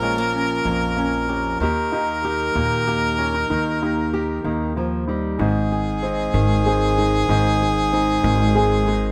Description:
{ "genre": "acoustic folk duo or small band", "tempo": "63 BPM (dotted quarters)", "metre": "6/8", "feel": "straight", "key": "Ab major", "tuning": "A4 = 441 Hz", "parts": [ { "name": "warm harmonica", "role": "second line", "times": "0.0-9.1 s", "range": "Ab4 to Bb4", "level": "-25 LUFS", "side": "equal", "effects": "none" }, { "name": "nylon-string guitar", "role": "accompaniment", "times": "0.0-9.1 s", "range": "F2 to Ab4", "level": "-26 LUFS", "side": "equal", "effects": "none" }, { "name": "clear upright piano", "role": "arpeggios", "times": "0.0-9.1 s", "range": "Eb3 to Ab4", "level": "-28 LUFS", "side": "equal", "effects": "none" }, { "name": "upright bass", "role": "bass", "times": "0.0-9.1 s", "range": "Ab1 to Eb2", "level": "-26 LUFS", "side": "equal", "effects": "none" } ], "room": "light reverb", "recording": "none", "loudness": "-20 LUFS", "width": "mono", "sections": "0.0-5.4 A section; 5.4-9.1 B section", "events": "none", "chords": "0.0 Bbm; 1.6 Eb; 5.4 Ab", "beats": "0.65 | 1.60 2.55 | 3.50 4.45 | 5.39 6.34 | 7.29 8.24" }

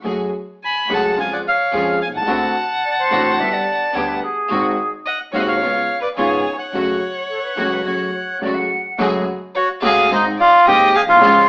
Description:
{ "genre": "tango", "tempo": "108 BPM", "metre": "4/4", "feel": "rubato", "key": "F# harmonic minor", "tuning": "A4 = 440 Hz", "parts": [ { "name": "warm concert grand piano", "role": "accompaniment", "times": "0.0-11.5 s", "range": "D#1 to G#4", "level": "-21 LUFS", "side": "equal", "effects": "none" }, { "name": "rich symphonic string section", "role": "stabs", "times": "0.0-11.5 s", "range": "G#3 to G#4", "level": "-25 LUFS", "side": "equal", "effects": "none" }, { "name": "upright bass", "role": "bass", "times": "0.1-11.5 s", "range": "F#1 to E#2", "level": "-37 LUFS", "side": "equal", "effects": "none" }, { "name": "bandoneon", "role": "melody", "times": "0.6-11.5 s", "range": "D#4 to B5", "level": "-16 LUFS", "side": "equal", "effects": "none" }, { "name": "warm violin", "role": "second line", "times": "0.6-11.5 s", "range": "G#4 to G#5", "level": "-23 LUFS", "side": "equal", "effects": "none" }, { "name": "concert flute", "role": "second line", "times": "2.8-9.0 s", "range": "G#4 to F#5", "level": "-22 LUFS", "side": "equal", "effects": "none" } ], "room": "wet studio reverb, RT60 0.7 s", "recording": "band playing live in one room, AM radio sound", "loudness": "-15 LUFS", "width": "side -30 dB against mid", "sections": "0.0-9.0 A section; 9.0-11.5 B section", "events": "none", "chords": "0.1 F#madd9; 1.2 C#/E#; 2.3 D7; 3.4 G; 4.5 G#7; 5.6 C#7; 6.7 F#m; 9.0 F#madd9; 10.1 G#", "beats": "| 0.05 0.62 1.18 1.74 | 2.30 2.85 3.40 3.96 | 4.51 5.06 5.62 6.17 | 6.73 7.29 7.85 8.42 | 8.99 9.56 10.12 10.67 | 11.23" }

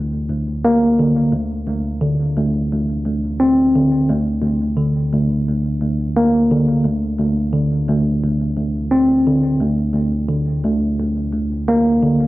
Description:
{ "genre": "hip hop", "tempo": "87 BPM", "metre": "4/4", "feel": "swing 54% on 16ths", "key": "unclear", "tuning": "A4 = 440 Hz", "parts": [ { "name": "mellow tine electric piano", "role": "solo", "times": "0.0-12.3 s", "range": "D2 to C4", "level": "-15 LUFS", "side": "equal", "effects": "medium stereo tremolo, cassette tape, high-pass filter, low-pass filter, ping-pong delay" } ], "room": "moderate echo chamber reverb, RT60 1.6 s, digital ambience", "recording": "worn, warbling old tape, cassette tape, warbly pitch drift, nothing above 7.9 kHz", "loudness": "-15 LUFS", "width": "side -17 dB against mid", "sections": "0.0-12.3 A section", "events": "none", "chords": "0.0 Bb/D; 1.3 Csus2/D; 4.1 Bb/D; 6.8 Csus2/D; 9.6 Bb/D", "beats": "0.64 | 1.33 2.02 2.71 3.40 | 4.09 4.78 5.47 6.16 | 6.85 7.54 8.23 8.92 | 9.61 10.30 10.98 11.68" }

